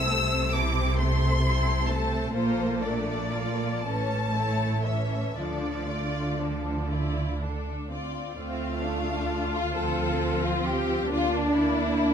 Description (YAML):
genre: classical, slow romantic movement for string orchestra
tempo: 38-45 BPM (dotted quarters)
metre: 6/8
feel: rubato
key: D minor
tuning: A4 = 439 Hz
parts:
  - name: warm symphonic violin section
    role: melody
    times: 0.0-12.1 s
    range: C5 to E6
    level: -32 LUFS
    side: left 3 dB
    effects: none
  - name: rich studio violin section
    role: second line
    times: 0.0-12.1 s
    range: C4 to D5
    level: -32 LUFS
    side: left 3 dB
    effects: none
  - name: rich symphonic viola section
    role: accompaniment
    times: 0.0-12.1 s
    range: E3 to F4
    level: -32 LUFS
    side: right 1 dB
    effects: none
  - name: warm studio double bass section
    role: bass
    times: 0.0-12.1 s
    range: A1 to D2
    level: -30 LUFS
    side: right 2 dB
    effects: none
  - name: warm symphonic cello section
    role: bass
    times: 0.0-12.1 s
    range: A2 to D4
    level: -30 LUFS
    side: right 1 dB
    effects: none
room: moderate recital hall reverb, RT60 1.4 s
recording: close, detailed microphones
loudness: -24 LUFS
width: side -8 dB against mid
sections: 0.0-8.4 A section; 8.4-12.1 A section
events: none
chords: 0.0 Am/C; 2.3 Bbmaj7; 3.8 A; 5.4 Dm; 11.1 Bb/D